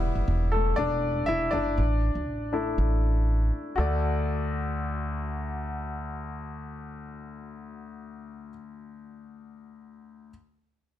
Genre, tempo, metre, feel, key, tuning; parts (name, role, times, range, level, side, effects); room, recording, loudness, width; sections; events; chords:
pop; 120 BPM; 4/4; straight; D major; A4 = 440 Hz
bright concert grand piano; accompaniment; 0.0-10.3 s; D2 to E5; -30 LUFS; left 3 dB
upright bass; bass; 0.0-8.5 s; E1 to D2; -28 LUFS; equal
light reverb, small room ambience; dense, heavily limited modern master; -25 LUFS; side -12 dB against mid
0.0-3.8 A section; 3.8-7.8 B section
grand piano solo 0.0-3.8
0.0 Em; 1.8 Asus4; 3.8 D